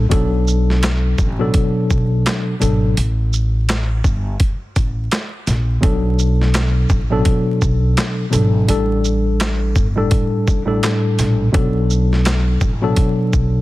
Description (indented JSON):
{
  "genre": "hip hop, boom-bap hip-hop",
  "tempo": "84 BPM",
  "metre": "4/4",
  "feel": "swing 61% on 16ths",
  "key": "B minor",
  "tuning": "A4 = 440 Hz",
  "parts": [
    { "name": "mellow tine electric piano", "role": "accompaniment", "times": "0.0-13.6 s", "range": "A2 to A4", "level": "-18 LUFS", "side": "left 1 dB", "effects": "medium stereo tremolo, cassette tape, high-pass filter, low-pass filter" },
    { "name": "upright bass", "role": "bass", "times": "0.0-13.6 s", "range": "G1 to B1", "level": "-18 LUFS", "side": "equal", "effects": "none" },
    { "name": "boom bap sampler-style drum kit", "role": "drums", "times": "0.1-13.5 s", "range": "handclaps, hi-hat, kick drum, shaker, snare drum", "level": "-18 LUFS", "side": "equal", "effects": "none" }
  ],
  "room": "digital ambience",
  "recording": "dense, heavily limited modern master, vinyl crackle",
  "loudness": "-14 LUFS",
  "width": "side -18 dB against mid",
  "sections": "0.0-13.6 A section",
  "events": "break 3.0-5.8",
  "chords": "0.1 Bm7; 3.0 N.C.; 5.8 Bm7; 8.7 A7sus4; 11.5 Bm7",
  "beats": "| 0.11 0.83 1.54 2.26 | 2.97 3.69 4.40 5.11 | 5.83 6.54 7.26 7.97 | 8.69 9.40 10.11 10.83 | 11.54 12.26 12.97"
}